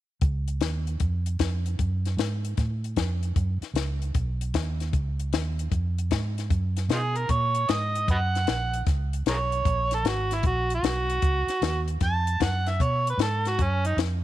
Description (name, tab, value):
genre	electric blues shuffle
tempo	153 BPM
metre	4/4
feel	swing 66% on 8ths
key	F# major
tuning	A4 = 442 Hz
part	vintage muted fingered electric bass	bass	0.2-14.2 s	G#1 to B2	-27 LUFS	right 1 dB	none
part	compact cocktail drum kit	drums	0.2-14.1 s	hi-hat, kick drum, snare drum	-28 LUFS	left 3 dB	none
part	overdriven harmonica	melody	6.9-14.0 s	C#4 to A5	-27 LUFS	right 2 dB	none
room	small room ambience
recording	1960s-style stereo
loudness	-24 LUFS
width	side -13 dB against mid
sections	0.2-6.5 A section; 6.5-14.2 B section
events	none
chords	0.2 C#; 1.8 Fm; 3.4 F#5; 4.1 B; 4.9 C#; 6.5 F#; 12.8 B5